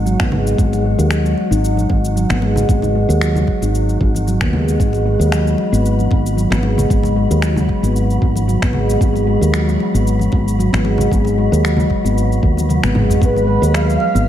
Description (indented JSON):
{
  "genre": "organic downtempo",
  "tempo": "114 BPM",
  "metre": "4/4",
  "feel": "swing 54% on 16ths",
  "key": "G# minor",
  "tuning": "A4 = 435 Hz",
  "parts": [
    { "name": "woody fretless electric bass", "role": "bass", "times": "0.0-14.3 s", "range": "G#1 to D#2", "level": "-16 LUFS", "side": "equal", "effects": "sidechain pumping" },
    { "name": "wind-like tuned noise texture", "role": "texture", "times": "0.0-14.3 s", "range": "B3 to B6", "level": "-29 LUFS", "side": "equal", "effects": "built-in reverb" },
    { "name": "handpan", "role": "arpeggios", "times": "0.1-14.3 s", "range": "F#3 to D#4", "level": "-18 LUFS", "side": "left 1 dB", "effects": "low-pass filter, tape echo" },
    { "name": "afro-pop drum kit", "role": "drums", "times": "0.1-14.2 s", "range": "finger snaps, shaker, toms", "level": "-25 LUFS", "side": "equal", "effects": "none" },
    { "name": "electronic kick drum", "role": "drums", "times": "0.2-13.3 s", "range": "none", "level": "-17 LUFS", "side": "equal", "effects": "none" },
    { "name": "congas", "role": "percussion", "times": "0.3-14.1 s", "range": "none", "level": "-25 LUFS", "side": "left 1 dB", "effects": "none" },
    { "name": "breathy flute-like synth lead", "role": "melody", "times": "13.2-14.3 s", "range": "B4 to E#5", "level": "-18 LUFS", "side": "right 2 dB", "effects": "ensemble chorus, cassette tape, tape echo" }
  ],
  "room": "light reverb",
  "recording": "echo-heavy mix",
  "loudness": "-13 LUFS",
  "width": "side -11 dB against mid",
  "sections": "0.0-14.3 A section",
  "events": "filter sweep on handpan 0.0-14.3; kick drops out 12.7-13.2; drum fill 12.7-13.2",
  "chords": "0.0 G#m7"
}